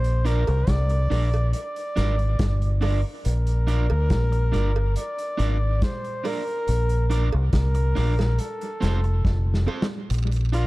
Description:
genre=roots reggae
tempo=70 BPM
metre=4/4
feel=straight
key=Bb major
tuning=A4 = 441 Hz
part: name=clear flugelhorn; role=melody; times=0.0-10.7 s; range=F4 to D5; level=-30 LUFS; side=equal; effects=tube saturation, tape echo
part: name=deep dub fingered electric bass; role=bass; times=0.0-10.7 s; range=F1 to D2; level=-21 LUFS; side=equal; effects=none
part: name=vintage drum kit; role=drums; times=0.0-10.7 s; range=hi-hat, kick drum, snare drum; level=-28 LUFS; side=equal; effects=analog delay
part: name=electric guitar at the edge of break-up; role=accompaniment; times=0.2-10.7 s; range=C4 to D5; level=-33 LUFS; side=right 4 dB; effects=tape echo
part: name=cowbell and jawbone-type rattle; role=percussion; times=0.5-10.3 s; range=none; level=-36 LUFS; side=right 6 dB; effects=none
room=small room ambience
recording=dark, warm production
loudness=-21 LUFS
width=side -20 dB against mid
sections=0.0-10.1 A section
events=drum fill 9.2-10.1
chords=0.0 Bb; 8.4 F; 10.1 Bb

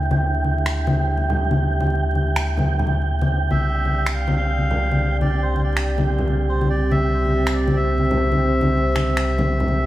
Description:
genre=deep dubstep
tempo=141 BPM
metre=4/4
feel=swing 61% on 16ths, half-time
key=unclear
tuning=A4 = 440 Hz
part: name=dark analog pad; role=sustained chords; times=0.0-9.9 s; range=C4 to E5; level=-25 LUFS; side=right 1 dB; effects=chorus
part: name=soft dub sub bass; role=bass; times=0.0-9.9 s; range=C2 to D2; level=-22 LUFS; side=equal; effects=none
part: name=wind-like tuned noise texture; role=texture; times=0.0-9.9 s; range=G5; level=-29 LUFS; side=right 6 dB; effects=built-in reverb
part: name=congas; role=percussion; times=0.1-9.8 s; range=none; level=-23 LUFS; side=left 1 dB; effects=none
part: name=electronic finger snaps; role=drums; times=0.7-9.2 s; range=none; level=-27 LUFS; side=equal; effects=overdrive, studio reverb
part: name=melodica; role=melody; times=3.5-9.9 s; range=C5 to F5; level=-26 LUFS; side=left 1 dB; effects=vintage 12-bit sampler grit, dub echo
room=moderate lush hall reverb, RT60 1.8 s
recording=vinyl crackle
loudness=-18 LUFS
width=side -15 dB against mid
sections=0.0-9.9 A section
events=none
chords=0.0 Dsus2; 3.5 C

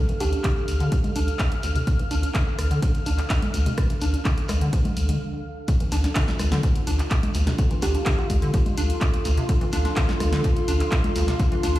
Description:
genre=acid house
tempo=126 BPM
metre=4/4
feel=straight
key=D minor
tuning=A4 = 441 Hz
part: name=dark analog pad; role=sustained chords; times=0.0-11.8 s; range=F4 to A4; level=-35 LUFS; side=left 3 dB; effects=chorus, sidechain pumping
part: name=ethereal airy pad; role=texture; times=0.0-11.8 s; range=D4 to F6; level=-32 LUFS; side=right 1 dB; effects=ensemble chorus, built-in reverb, sidechain pumping
part: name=deep acid bass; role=riff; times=0.1-11.8 s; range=D2 to D4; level=-29 LUFS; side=equal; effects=lush chorus, sidechain pumping, analog delay
part: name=punchy analog drum machine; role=drums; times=0.1-11.8 s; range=congas, handclaps, hi-hat, rim click, snare drum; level=-30 LUFS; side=equal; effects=none
part: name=shekere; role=percussion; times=0.1-11.8 s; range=none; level=-38 LUFS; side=left 2 dB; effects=none
part: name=kalimba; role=melody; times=0.2-0.3, 7.8-8.5 s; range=F4 to G4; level=-32 LUFS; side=right 2 dB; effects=tape echo
part: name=round analog bass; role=bass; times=0.2-11.8 s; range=D2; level=-23 LUFS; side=equal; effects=tube saturation, sidechain pumping
part: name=electronic kick drum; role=drums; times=0.4-11.5 s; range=none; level=-22 LUFS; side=equal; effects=none
room=light reverb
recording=played on a big sound system in a bare room, large studio reverb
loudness=-20 LUFS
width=side -15 dB against mid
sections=0.0-5.7 A section; 5.7-11.8 B section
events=filter sweep on acid bass 0.0-5.7; break 5.2-5.7; drop 5.7-11.8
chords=0.0 Dm; 5.7 Dm7

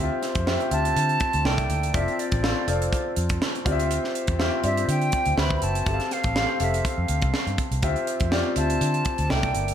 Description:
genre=polished 1980s jazz-funk pop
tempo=122 BPM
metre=4/4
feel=swing 54% on 16ths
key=D minor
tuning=A4 = 440 Hz
part: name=warm grand piano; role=accompaniment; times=0.0-9.7 s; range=Bb3 to F5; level=-27 LUFS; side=left 2 dB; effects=wide subtle chorus
part: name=vintage muted fingered electric bass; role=bass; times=0.0-9.7 s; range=F1 to D3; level=-26 LUFS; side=equal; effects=none
part: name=tight funk drum kit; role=drums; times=0.2-9.7 s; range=hi-hat, kick drum, snare drum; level=-27 LUFS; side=right 1 dB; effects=none
part: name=breathy silver concert flute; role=melody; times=0.7-9.7 s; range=D5 to B5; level=-27 LUFS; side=right 1 dB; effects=ping-pong delay
room=moderate plate reverb, RT60 1.4 s, small room ambience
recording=dreamy mix soaked in reverb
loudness=-21 LUFS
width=side -9 dB against mid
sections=0.0-9.7 A section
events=none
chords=0.0 Dm11; 1.4 C13; 1.9 F6; 3.7 Dm11; 5.4 D13; 5.9 G9sus4; 7.8 Dm11

